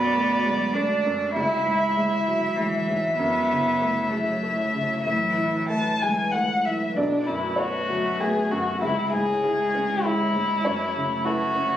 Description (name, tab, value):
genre	neoclassical piano and strings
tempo	98 BPM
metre	3/4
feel	rubato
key	unclear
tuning	A4 = 436 Hz
part	dark violin	melody	0.0-11.8 s	D4 to A5	-24 LUFS	left 2 dB	none
part	warm cello	second line	0.0-11.8 s	E3 to E4	-27 LUFS	right 2 dB	none
part	felt-muted upright piano	accompaniment	0.0-11.8 s	B1 to E5	-28 LUFS	right 1 dB	none
part	hollow soft pad	sustained chords	0.0-11.8 s	F#3 to D5	-34 LUFS	left 1 dB	ensemble chorus
room	moderate large studio reverb, RT60 0.8 s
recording	recorded on a phone in the room, studio reverb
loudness	-21 LUFS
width	side -11 dB against mid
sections	0.0-7.0 A section; 7.0-11.8 B section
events	none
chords	0.0 Bm7; 1.4 C#m; 3.2 F#m7; 5.1 Asus2; 7.0 Bm7; 8.8 C#m; 10.7 F#m7